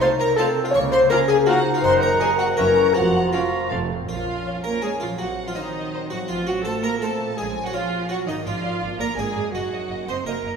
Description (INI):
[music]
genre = cinematic, playful, whimsical film cue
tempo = 165 BPM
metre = 3/4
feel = straight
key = Bb minor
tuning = A4 = 440 Hz
[part]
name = harpsichord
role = melody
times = 0.0-10.6 s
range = Eb4 to Db5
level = -32 LUFS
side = right 2 dB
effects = none
[part]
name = warm studio violin section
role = melody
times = 0.0-10.5 s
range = C5 to F5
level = -37 LUFS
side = left 3 dB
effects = none
[part]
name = clear oboe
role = second line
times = 0.0-3.9 s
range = F5 to Bb5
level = -31 LUFS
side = right 3 dB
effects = none
[part]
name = flute section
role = second line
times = 0.0-3.8 s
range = Bb5 to Db6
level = -29 LUFS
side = right 2 dB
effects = none
[part]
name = warm clarinet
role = second line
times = 0.0-3.9 s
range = Bb3 to F4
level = -29 LUFS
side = right 1 dB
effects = none
[part]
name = warm studio violin section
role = second line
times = 0.0-10.6 s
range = Eb5 to Db6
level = -30 LUFS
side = left 1 dB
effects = none
[part]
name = mellow bassoon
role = accompaniment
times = 0.0-3.8 s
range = Eb3 to F3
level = -30 LUFS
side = right 3 dB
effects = none
[part]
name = rich studio viola section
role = accompaniment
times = 0.0-10.6 s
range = A3 to C5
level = -30 LUFS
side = right 4 dB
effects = none
[part]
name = mellow French horn section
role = sustained chords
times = 0.0-10.4 s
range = F3 to Db5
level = -22 LUFS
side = left 2 dB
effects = none
[part]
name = concert harp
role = arpeggios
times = 0.0-10.6 s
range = F2 to C5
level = -34 LUFS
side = left 7 dB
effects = none
[part]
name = clear studio double bass section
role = bass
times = 0.7-10.5 s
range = F1 to Db2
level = -34 LUFS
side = right 5 dB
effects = none
[part]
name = dark symphonic cello section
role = bass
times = 0.7-10.6 s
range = F2 to C4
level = -30 LUFS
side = right 3 dB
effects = none
[sound]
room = wet scoring stage reverb, RT60 2.0 s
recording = minimal, uncompressed stereo recording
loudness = -19 LUFS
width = side -6 dB against mid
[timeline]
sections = 0.0-4.1 A section; 4.1-10.6 B section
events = none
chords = 0.0 F7/C; 0.7 Bbm/Db; 1.8 Ebm/Gb; 2.6 Gb7; 2.9 Bbm/F; 3.7 F; 4.1 Bbm; 5.2 Cm7b5/Bb; 6.3 F/A; 7.4 Bbm; 8.4 Bb7/Ab; 9.5 Ebm/Gb